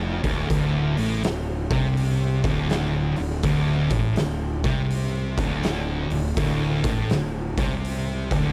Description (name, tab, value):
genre	stoner and doom metal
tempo	82 BPM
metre	4/4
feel	swing 64% on 8ths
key	D minor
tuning	A4 = 440 Hz
part	thick fuzz guitar	riff	0.0-8.5 s	D2 to C3	-30 LUFS	equal	distortion
part	thick fuzz guitar	riff	0.0-8.5 s	D2 to C3	-29 LUFS	equal	distortion
part	fuzz fingered electric bass	bass	0.0-8.5 s	D1 to C2	-30 LUFS	equal	overdrive
part	oversized low-tuned drum kit	drums	0.2-8.4 s	hi-hat, kick drum, snare drum	-30 LUFS	equal	none
room	small room ambience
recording	none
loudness	-24 LUFS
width	mono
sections	0.0-8.5 A section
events	none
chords	0.0 D5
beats	| 0.51 1.25 1.98 2.71 | 3.44 4.18 4.91 5.64 | 6.38 7.11 7.85